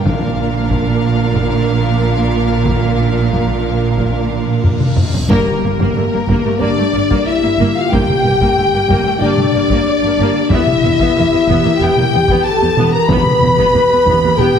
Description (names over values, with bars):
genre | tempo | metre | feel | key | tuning
cinematic, epic orchestral film score | 92 BPM | 4/4 | straight | G dorian | A4 = 440 Hz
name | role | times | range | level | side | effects
warm symphonic violin section | melody | 0.0-14.6 s | Bb4 to B5 | -21 LUFS | left 4 dB | none
clear symphonic violin section | second line | 0.0-14.6 s | Bb4 to B5 | -24 LUFS | left 3 dB | none
warm symphonic viola section | accompaniment | 0.0-14.6 s | A3 to G4 | -21 LUFS | right 1 dB | none
mellow French horn section | sustained chords | 0.0-14.6 s | D3 to B4 | -17 LUFS | left 3 dB | none
rich symphonic double bass section | bass | 0.0-14.4 s | E1 to Bb1 | -20 LUFS | right 4 dB | none
warm symphonic cello section | bass | 0.0-14.6 s | E2 to Bb2 | -20 LUFS | right 4 dB | none
taiko ensemble | drums | 0.1-14.6 s | none | -19 LUFS | left 1 dB | none
reverse cymbal and impact | sound effects | 4.7-7.9 s | none | -29 LUFS | equal | none
mellow hollow concert flute | second line | 5.3-14.6 s | Bb4 to B5 | -23 LUFS | equal | none
timpani | percussion | 5.3-6.2 s | G2 | -27 LUFS | left 3 dB | none
room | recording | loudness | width
wet concert hall reverb, RT60 1.7 s | heavily compressed radio sound, multiband compression | -11 LUFS | side -8 dB against mid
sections
0.0-5.3 A section; 5.3-14.6 B section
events
build-up 0.0-5.3; drum fill 4.6-5.3; reverse cymbal 4.7-5.3; band accent 5.3-6.0; impact 5.3-7.9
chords
0.1 Bb; 5.3 Gm; 10.5 Em